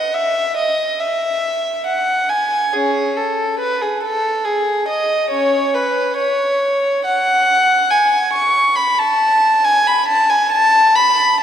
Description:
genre	classical, baroque-style suite movement for unaccompanied violin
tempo	70 BPM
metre	3/4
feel	rubato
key	A major from 7.9 s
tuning	A4 = 443 Hz
part	warm violin	solo	0.0-11.4 s	C#4 to C#6	-14 LUFS	equal	none
room	wet concert hall reverb, RT60 2.1 s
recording	dark, warm production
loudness	-14 LUFS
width	side -9 dB against mid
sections	0.0-11.4 A section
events	none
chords	none

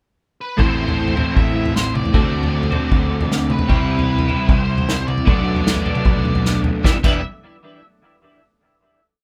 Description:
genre	indie rock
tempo	153 BPM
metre	4/4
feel	straight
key	E minor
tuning	A4 = 439 Hz
part	octave-fuzz lead guitar	melody	0.4-7.2 s	B4 to E5	-30 LUFS	equal	distortion
part	biting overdriven guitar	riff	0.6-7.2 s	A2 to A4	-28 LUFS	equal	none
part	twelve-string electric guitar	riff	0.6-7.2 s	A2 to B4	-24 LUFS	equal	ensemble chorus
part	growling picked electric bass	bass	0.6-7.2 s	E1 to D2	-27 LUFS	equal	overdrive
part	unplugged drum kit	drums	0.6-7.1 s	crash cymbal, kick drum, snare drum, toms	-21 LUFS	equal	none
room	light reverb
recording	rough home demo mix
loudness	-18 LUFS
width	mono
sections	0.0-0.6 pickup bar; 0.6-6.8 pre-chorus; 6.8-8.4 final chord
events	drum fill 6.4-6.8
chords	0.0 N.C.; 0.6 Am; 2.1 D7; 3.7 Cmaj7; 5.3 Bm7; 6.8 Em7

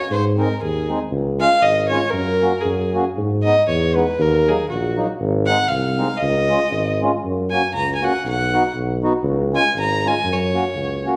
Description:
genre	alpine folk, alpine dance band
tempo	118 BPM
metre	2/4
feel	swing 54% on 8ths, rubato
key	F# major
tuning	A4 = 439 Hz
part	dark fiddle	melody	0.0-11.1 s	F#4 to A#5	-22 LUFS	equal	none
part	warm tuba	bass	0.1-11.1 s	G#1 to G#2	-24 LUFS	equal	none
part	mellow accordion	accompaniment	0.4-11.2 s	F#3 to F#4	-26 LUFS	equal	none
room	wet recital hall reverb, RT60 1.2 s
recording	recorded in a church or concert hall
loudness	-19 LUFS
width	mono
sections	0.0-11.2 A section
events	none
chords	0.1 G#; 1.1 C#; 2.1 F#; 3.2 G#m; 4.2 D#m; 5.2 G#; 6.2 C#add9; 7.2 F#; 8.3 B; 9.3 C#; 10.3 F#

